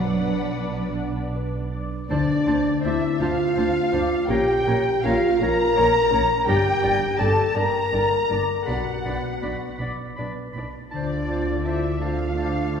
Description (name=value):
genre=cinematic, emotional film score for orchestra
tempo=54 BPM (dotted quarters)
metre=6/8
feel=uneven beats, rubato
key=D minor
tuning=A4 = 440 Hz
part: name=muted studio violin section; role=melody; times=0.0-12.8 s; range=B4 to Bb5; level=-31 LUFS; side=left 2 dB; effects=none
part: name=muted studio violin section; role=second line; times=0.0-12.8 s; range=D5 to Bb5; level=-31 LUFS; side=left 2 dB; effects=none
part: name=muted studio viola section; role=accompaniment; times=0.0-12.8 s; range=A3 to D5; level=-32 LUFS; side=right 2 dB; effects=none
part: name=concert harp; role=arpeggios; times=0.0-12.8 s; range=G2 to C#6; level=-31 LUFS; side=left 5 dB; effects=none
part: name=muted studio cello section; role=bass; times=0.0-12.8 s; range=D2 to F#3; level=-32 LUFS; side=right 2 dB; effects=none
part: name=muted studio double bass section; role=bass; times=0.0-12.8 s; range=G1 to D2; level=-29 LUFS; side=right 1 dB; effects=none
part: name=bright concert flute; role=second line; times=2.1-12.8 s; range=D5 to Bb5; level=-30 LUFS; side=equal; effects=none
part: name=clear oboe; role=second line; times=2.1-12.8 s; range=A5 to B5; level=-34 LUFS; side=equal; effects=none
part: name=warm clarinet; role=second line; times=2.1-12.8 s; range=C5 to D5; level=-35 LUFS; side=left 1 dB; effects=none
part: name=dark French horn section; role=sustained chords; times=2.1-12.8 s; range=D4 to Bb4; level=-23 LUFS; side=left 1 dB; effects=none
room=wet scoring stage reverb, RT60 1.9 s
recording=heard from further back in the room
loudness=-20 LUFS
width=side -7 dB against mid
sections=0.0-2.1 A section; 2.1-12.8 B section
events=none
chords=0.0 Bm; 2.1 Dm7; 4.3 Bbm; 6.5 Gm; 8.7 Bmadd9; 10.9 Dm7